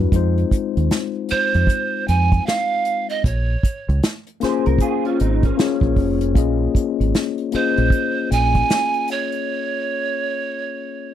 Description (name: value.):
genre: R&B, neo-soul.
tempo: 77 BPM.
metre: 4/4.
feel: swing 62% on 16ths.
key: unclear.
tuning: A4 = 438 Hz.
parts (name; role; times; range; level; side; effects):
tine electric piano; accompaniment; 0.0-11.1 s; G3 to Eb5; -23 LUFS; left 11 dB; auto-pan.
deep dub fingered electric bass; bass; 0.0-8.6 s; F1 to F2; -19 LUFS; right 1 dB; none.
unplugged drum kit; drums; 0.1-9.5 s; hi-hat, kick drum, snare drum; -19 LUFS; right 1 dB; none.
breathy pan flute; melody; 1.3-11.1 s; C5 to Ab5; -21 LUFS; right 5 dB; slapback echo.
electric guitar through a small old amp; second line; 4.4-6.6 s; Bb3 to C5; -26 LUFS; right 8 dB; ensemble chorus.
room: little or no reverb.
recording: dry, close 1970s-style studio recording.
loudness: -17 LUFS.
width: side -10 dB against mid.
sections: 0.1-11.1 A section.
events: break 9.5-11.1.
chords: 0.1 Fm7; 3.2 Bbm9.